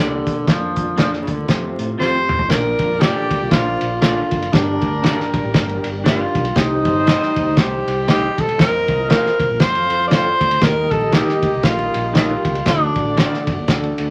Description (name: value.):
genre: uptempo 1960s-style soul.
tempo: 118 BPM.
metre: 4/4.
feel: swing 59% on 8ths.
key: Bb major.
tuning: A4 = 440 Hz.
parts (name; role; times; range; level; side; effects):
breathy tenor saxophone; melody; 0.0-13.4 s; C3 to D5; -22 LUFS; equal; none.
overdriven tine electric piano; accompaniment; 0.0-14.1 s; G2 to A5; -29 LUFS; equal; medium tremolo.
tonewheel organ; sustained chords; 0.0-14.1 s; D3 to G4; -34 LUFS; equal; none.
electric guitar through a small old amp; stabs; 0.0-13.3 s; C4 to F5; -27 LUFS; equal; none.
fingered electric bass; bass; 0.0-14.1 s; E1 to A2; -29 LUFS; equal; none.
cloth-damped thuddy drum kit; drums; 0.3-14.1 s; hi-hat, kick drum, ride cymbal, snare drum, toms; -21 LUFS; equal; none.
vibraphone with soft mallets; second line; 2.0-13.4 s; none; barely audible; none; none.
warm horn section; second line; 2.5-14.1 s; G3 to F5; -30 LUFS; equal; none.
room: moderate studio ambience, RT60 0.5 s.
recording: vinyl crackle.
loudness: -17 LUFS.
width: mono.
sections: 0.0-2.5 A section; 2.5-14.1 B section.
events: drum fill 2.0-2.5.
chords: 0.5 Bb/F; 1.5 F; 2.5 Bb; 4.5 Gm; 6.6 Cm; 8.6 Fsus4; 9.6 F; 10.6 Eb; 12.7 D.